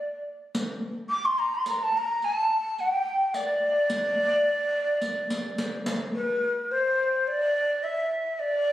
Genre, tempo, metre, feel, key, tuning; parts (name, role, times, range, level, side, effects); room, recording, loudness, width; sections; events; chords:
Arabic maqam ensemble; 107 BPM (eighths); 10/8; straight; D maqam bayati; A4 = 438 Hz
breathy ney; melody; 0.0-8.7 s; B4-43c to D6; -24 LUFS; equal
riq; percussion; 0.5-6.1 s; -32 LUFS; equal
moderate recital hall reverb, RT60 1.5 s; recorded on a phone in the room, club reverb; -24 LUFS; side -13 dB against mid
0.0-6.1 A section; 6.1-8.7 B section
drum fill 5.0-6.1